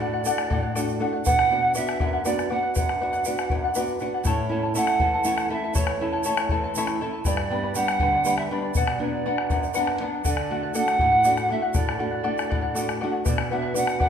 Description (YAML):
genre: andean folk, Andean ensemble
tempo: 80 BPM (dotted quarters)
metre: 6/8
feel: straight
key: unclear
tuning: A4 = 440 Hz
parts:
  - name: polished pan flute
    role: melody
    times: 0.0-14.1 s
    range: C#5 to F#5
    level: -25 LUFS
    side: right 3 dB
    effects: none
  - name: charango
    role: accompaniment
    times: 0.0-14.1 s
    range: E4 to B5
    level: -28 LUFS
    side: left 3 dB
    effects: none
  - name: nylon-string guitar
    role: accompaniment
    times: 0.0-14.1 s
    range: E2 to F#5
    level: -28 LUFS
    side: equal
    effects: none
  - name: bombo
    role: percussion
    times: 0.1-14.1 s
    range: none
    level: -28 LUFS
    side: left 2 dB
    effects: none
  - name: tube shaker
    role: percussion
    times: 0.2-13.9 s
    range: none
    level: -36 LUFS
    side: right 6 dB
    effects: none
room: wet recital hall reverb, RT60 1.6 s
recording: minimal, uncompressed stereo recording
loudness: -21 LUFS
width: side -8 dB against mid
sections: 0.0-10.3 A section; 10.3-14.1 A section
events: nylon-string guitar fill 9.5-10.3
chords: 0.0 D; 1.3 Bm; 4.3 A; 7.3 G; 8.8 Bm; 10.3 D; 13.3 Bm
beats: 0.51 | 1.26 2.01 | 2.76 3.51 | 4.25 5.00 | 5.75 6.50 | 7.25 8.00 | 8.75 9.50 | 10.25 11.00 | 11.75 12.51 | 13.26 14.01